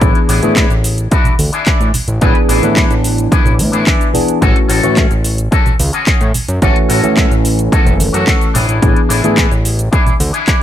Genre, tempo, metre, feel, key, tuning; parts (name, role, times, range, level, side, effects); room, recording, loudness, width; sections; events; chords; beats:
nu-disco, nu disco; 109 BPM; 4/4; straight; A major; A4 = 440 Hz
barky tine electric piano; accompaniment; 0.0-9.5 s; E3 to B4; -16 LUFS; equal; overdrive, phaser, ping-pong delay
electric guitar with an envelope filter; riff; 0.0-10.6 s; C#4 to B4; -19 LUFS; left 4 dB; lush chorus, ping-pong delay
fat analog bass; bass; 0.0-10.3 s; F#1 to A2; -15 LUFS; equal; tube saturation
electronic kick drum; drums; 0.0-10.6 s; -13 LUFS; equal; overdrive
house drum kit; drums; 0.0-10.6 s; cabasa, handclaps, hi-hat; -19 LUFS; equal; overdrive
congas; percussion; 0.4-10.3 s; -22 LUFS; right 2 dB
little or no reverb; -10 LUFS; side -11 dB against mid
0.0-10.6 A section
0.0 E7/A; 4.4 A6; 8.6 E7/A
| 0.02 0.57 1.12 1.67 | 2.22 2.77 3.32 3.87 | 4.42 4.97 5.52 6.07 | 6.62 7.17 7.72 8.28 | 8.83 9.38 9.93 10.48